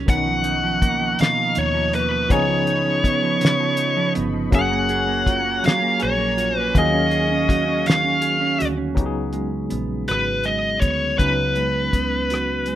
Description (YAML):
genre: slow six-eight R&B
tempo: 54 BPM (dotted quarters)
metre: 6/8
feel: straight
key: unclear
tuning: A4 = 443 Hz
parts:
  - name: mellow electric guitar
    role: second line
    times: 0.0-12.8 s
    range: B2 to Ab4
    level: -24 LUFS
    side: right 6 dB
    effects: none
  - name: barky tine electric piano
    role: accompaniment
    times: 0.0-12.8 s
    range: D#3 to F5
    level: -27 LUFS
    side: left 3 dB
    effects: medium tremolo
  - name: vintage muted fingered electric bass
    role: bass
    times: 0.0-12.8 s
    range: Gb1 to D#2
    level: -29 LUFS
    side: left 1 dB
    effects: none
  - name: high-gain lead guitar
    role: melody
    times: 0.1-12.8 s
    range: B4 to F#5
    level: -20 LUFS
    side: left 1 dB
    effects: distortion, slapback echo
  - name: warm analog pad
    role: sustained chords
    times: 0.1-8.9 s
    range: E#3 to C#6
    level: -33 LUFS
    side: left 1 dB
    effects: chorus
  - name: cloth-damped thuddy drum kit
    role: drums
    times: 0.1-12.8 s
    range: hi-hat, kick drum, rim click, snare drum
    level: -20 LUFS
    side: left 1 dB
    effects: none
room: moderate studio ambience, RT60 0.5 s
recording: rough home demo mix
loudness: -18 LUFS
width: side -12 dB against mid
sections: 0.1-9.0 A section; 9.0-12.8 B section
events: kick muted 7.9-9.0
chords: 0.1 Bmaj9#11; 2.3 Db9; 4.5 Gbmaj9; 6.7 Ebm11; 9.0 Db7sus4